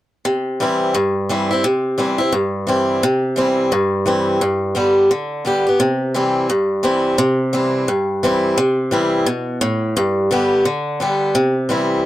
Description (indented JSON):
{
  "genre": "country",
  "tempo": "173 BPM",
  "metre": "4/4",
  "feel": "swing 61% on 8ths",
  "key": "C major",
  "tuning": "A4 = 440 Hz",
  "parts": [
    { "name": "picked swing-style acoustic guitar", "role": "solo", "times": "0.2-12.0 s", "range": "G2 to G4", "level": "-15 LUFS", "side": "equal", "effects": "none" }
  ],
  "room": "light reverb",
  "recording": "dry, close 1970s-style studio recording",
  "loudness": "-15 LUFS",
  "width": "side -14 dB against mid",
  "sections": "0.3-5.8 A section; 5.8-12.1 B section",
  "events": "none",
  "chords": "0.3 C; 4.4 G; 5.8 C; 10.0 G; 11.3 C",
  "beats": "| 0.26 0.61 0.96 1.30 | 1.65 1.99 2.34 2.69 | 3.03 3.38 3.73 4.07 | 4.42 4.76 5.11 5.46 | 5.80 6.15 6.50 6.84 | 7.19 7.53 7.88 8.23 | 8.57 8.92 9.27 9.61 | 9.96 10.31 10.65 11.00 | 11.35 11.69"
}